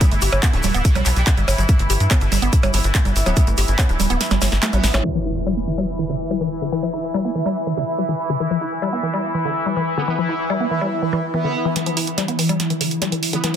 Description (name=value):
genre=psychedelic trance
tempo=143 BPM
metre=4/4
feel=straight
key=E minor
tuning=A4 = 439 Hz
part: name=metallic wobble bass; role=second line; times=0.0-5.0, 10.0-13.5 s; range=G3 to B3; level=-32 LUFS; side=right 4 dB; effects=distortion, lush chorus, sidechain pumping, high-pass filter, dub echo
part: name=bubbling stepped-filter texture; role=sustained chords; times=0.0-13.6 s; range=E3 to E4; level=-24 LUFS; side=equal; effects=chorus, built-in reverb, sidechain pumping
part: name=woody wave-folded pluck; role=riff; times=0.0-13.6 s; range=D3 to G4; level=-23 LUFS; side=moving between left 8 dB and right 7 dB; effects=chorus, auto-pan, sidechain pumping, dub echo
part: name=electronic kick drum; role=drums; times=0.0-3.9 s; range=none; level=-18 LUFS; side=equal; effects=none
part: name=techno drum kit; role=drums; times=0.0-5.1, 11.8-13.6 s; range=crash cymbal, handclaps, hi-hat, percussion blips, snare drum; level=-23 LUFS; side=right 2 dB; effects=low-pass filter on hats, low-pass filter on snare, low-pass filter on perc, low-pass filter on cymbals, low-pass filter on room
part: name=tube shaker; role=percussion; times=0.0-5.0 s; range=none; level=-31 LUFS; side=left 5 dB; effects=none
part: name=tight sequencer bass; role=bass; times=0.1-5.0 s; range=D1 to G2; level=-19 LUFS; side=equal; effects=none
part: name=zap and impact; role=sound effects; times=4.9-6.7 s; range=none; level=-29 LUFS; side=equal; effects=none
room=light reverb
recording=dense, heavily limited modern master, low-pass filter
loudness=-17 LUFS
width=side -9 dB against mid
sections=0.0-5.0 A section; 5.0-11.8 B section; 11.8-13.6 C section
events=kick drops out 4.2-5.0; drum fill 4.2-5.0, 11.8-13.6; band accent 4.9; impact 5.0-6.7; filter sweep on drum 5.0-11.8; filter sweep on synth arpeggio sound 5.0-11.8; filter sweep 5.0-11.8; build-up 11.8-13.6; filter sweep on synth texture 11.8-13.6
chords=0.0 G5; 5.0 E5